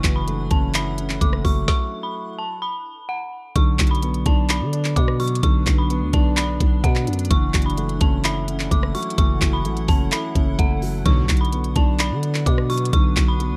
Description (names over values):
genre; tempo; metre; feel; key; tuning
hip hop, trap; 128 BPM; 4/4; half-time; B minor; A4 = 439 Hz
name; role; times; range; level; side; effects
dark detuned synth bell; melody; 0.0-13.6 s; F#5 to D6; -30 LUFS; equal; chorus
dark baby grand piano; accompaniment; 0.0-13.6 s; D3 to D5; -29 LUFS; equal; none
granular cloud pad; sustained chords; 0.0-13.6 s; D4 to F#5; -39 LUFS; equal; built-in reverb
growling 808-style bass; bass; 0.0-13.6 s; F#1 to D3; -25 LUFS; equal; none
trap drum kit; drums; 0.0-13.5 s; handclaps, hi-hat, kick drum, rim click, snare drum; -22 LUFS; equal; none
big bright polysynth; stabs; 11.1-11.3 s; D2 to F#3; -26 LUFS; equal; chorus
room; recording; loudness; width
digital ambience; none; -20 LUFS; mono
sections
0.0-3.6 A section; 3.6-13.6 B section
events
stop 1.7-3.6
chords
0.0 F#m7; 3.6 Bm; 7.3 F#m7; 11.1 Bm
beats
0.28 0.74 1.21 | 1.68 2.15 2.62 3.09 | 3.56 4.03 4.49 4.96 | 5.43 5.90 6.37 6.84 | 7.31 7.78 8.24 8.71 | 9.18 9.65 10.12 10.59 | 11.06 11.53 11.99 12.46 | 12.93 13.40